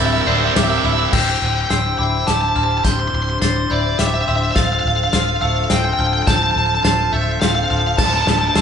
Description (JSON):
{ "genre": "post-rock", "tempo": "105 BPM", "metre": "3/4", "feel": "straight", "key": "unclear", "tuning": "A4 = 440 Hz", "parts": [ { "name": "smooth overdriven lead guitar", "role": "melody", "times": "0.0-8.6 s", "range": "D5 to C6", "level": "-19 LUFS", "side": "left 1 dB", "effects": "none" }, { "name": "bright symphonic string section", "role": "sustained chords", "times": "0.0-8.6 s", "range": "D3 to C5", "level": "-27 LUFS", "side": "left 2 dB", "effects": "none" }, { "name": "glockenspiel with hard plastic mallets", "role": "arpeggios", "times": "0.0-8.6 s", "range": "D6 to A6", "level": "-27 LUFS", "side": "right 2 dB", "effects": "none" }, { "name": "twangy electric guitar", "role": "arpeggios", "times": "0.0-8.6 s", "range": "D2 to C5", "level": "-26 LUFS", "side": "left 2 dB", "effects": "none" }, { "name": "tight distorted guitar", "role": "riff", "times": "0.0-1.1 s", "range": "C3 to C5", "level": "-20 LUFS", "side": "right 6 dB", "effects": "distortion" }, { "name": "vintage muted fingered electric bass", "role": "bass", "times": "0.0-8.6 s", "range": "D1", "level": "-21 LUFS", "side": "equal", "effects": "none" }, { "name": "loose indie drum kit", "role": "drums", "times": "0.6-8.6 s", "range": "crash cymbal, hi-hat, kick drum, ride cymbal, snare drum", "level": "-20 LUFS", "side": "left 1 dB", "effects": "none" } ], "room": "moderate large studio reverb, RT60 0.9 s", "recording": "band playing live in one room, nothing above 10.9 kHz", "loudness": "-15 LUFS", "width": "side -7 dB against mid", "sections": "0.0-1.1 A section; 1.1-8.6 B section", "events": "build-up 1.1-8.6; drum fill 1.1-8.6", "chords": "0.0 C7/D; 1.1 Cadd9/D" }